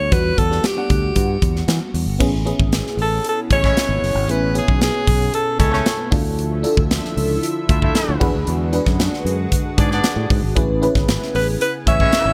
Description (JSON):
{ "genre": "polished 1980s jazz-funk pop", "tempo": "115 BPM", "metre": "4/4", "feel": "straight", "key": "A major", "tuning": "A4 = 439 Hz", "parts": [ { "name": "breathy alto saxophone", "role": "melody", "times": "0.0-6.1, 11.4-12.3 s", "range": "G4 to E5", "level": "-23 LUFS", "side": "equal", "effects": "plate reverb" }, { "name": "FM electric piano with soft pad layer", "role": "accompaniment", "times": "0.0-12.3 s", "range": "G3 to F#5", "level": "-26 LUFS", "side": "equal", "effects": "phaser, lush chorus, plate reverb" }, { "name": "fingered electric bass", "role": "bass", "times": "0.0-12.3 s", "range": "F#1 to E3", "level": "-23 LUFS", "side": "equal", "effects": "none" }, { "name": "modern studio drum kit", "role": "drums", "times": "0.1-12.3 s", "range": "crash cymbal, hi-hat, kick drum, snare drum", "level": "-22 LUFS", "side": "equal", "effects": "gated reverb" }, { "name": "lush unison pad", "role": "sustained chords", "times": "2.2-12.3 s", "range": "B2 to G#5", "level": "-32 LUFS", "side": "equal", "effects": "chorus" }, { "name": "clear horn section", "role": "second line", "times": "3.5-12.3 s", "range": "G#3 to E5", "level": "-28 LUFS", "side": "equal", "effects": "plate reverb, delay" } ], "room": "light reverb", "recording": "none", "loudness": "-18 LUFS", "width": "mono", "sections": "0.0-2.2 A section; 2.2-12.3 B section", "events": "none", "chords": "0.0 Em7; 2.2 Amaj9; 6.1 Dmadd9; 8.2 E9; 10.6 Amaj9" }